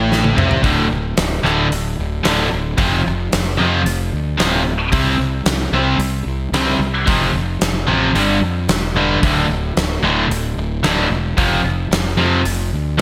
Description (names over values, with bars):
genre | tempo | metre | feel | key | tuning
hard rock | 112 BPM | 4/4 | straight | D minor | A4 = 444 Hz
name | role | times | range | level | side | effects
cranked stack guitar | riff | 0.0-13.0 s | D2 to C4 | -23 LUFS | equal | overdrive, slapback echo
scooped high-gain guitar | riff | 0.0-13.0 s | D2 to C4 | -23 LUFS | equal | distortion
fuzz fingered electric bass | bass | 0.0-13.0 s | D1 to F2 | -23 LUFS | equal | overdrive
gated 80s drum kit | drums | 0.1-13.0 s | hi-hat, kick drum, snare drum, toms | -23 LUFS | equal | none
room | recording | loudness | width
moderate lush hall reverb, RT60 1.9 s, studio ambience | big arena sound | -17 LUFS | mono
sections
0.6-13.0 A section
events
drum fill 0.1-0.6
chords
0.0 N.C.; 0.6 D5; 2.8 F5; 4.9 C5; 7.1 F; 8.2 G5; 9.2 D5; 11.4 F5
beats
0.10 | 0.63 1.17 1.71 2.25 | 2.78 3.32 3.86 4.40 | 4.93 5.47 6.01 6.54 | 7.08 7.62 8.16 8.69 | 9.23 9.77 10.30 10.84 | 11.38 11.91 12.45 12.99